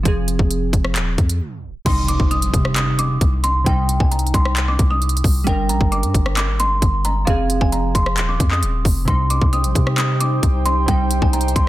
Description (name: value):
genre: hip hop, trap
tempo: 133 BPM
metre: 4/4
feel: half-time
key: C minor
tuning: A4 = 439 Hz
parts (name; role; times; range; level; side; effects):
- glassy digital keys; accompaniment; 0.0-11.7 s; C3 to Bb4; -25 LUFS; right 3 dB; chorus, low-pass filter
- long sustained 808-style bass; bass; 0.0-11.7 s; Eb1 to C3; -20 LUFS; equal; none
- trap drum kit; drums; 0.1-11.7 s; crash cymbal, handclaps, hi-hat, kick drum, rim click; -19 LUFS; equal; none
- kalimba; melody; 1.9-11.7 s; F5 to Eb6; -22 LUFS; equal; low-pass filter
- impact; sound effects; 1.9-3.7 s; none; -28 LUFS; equal; none
- warbly tape-like pad; sustained chords; 9.1-11.7 s; Eb4 to G5; -27 LUFS; equal; chorus, built-in reverb
room: little or no reverb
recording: dense, heavily limited modern master, tape stop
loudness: -15 LUFS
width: side -15 dB against mid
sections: 0.0-1.9 A section; 1.9-11.7 B section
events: break 1.4-1.9; tape stop 1.4-1.9; impact 1.9-3.7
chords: 0.1 Fm; 1.9 Cm; 5.5 Gm; 7.3 Fm; 9.1 Cm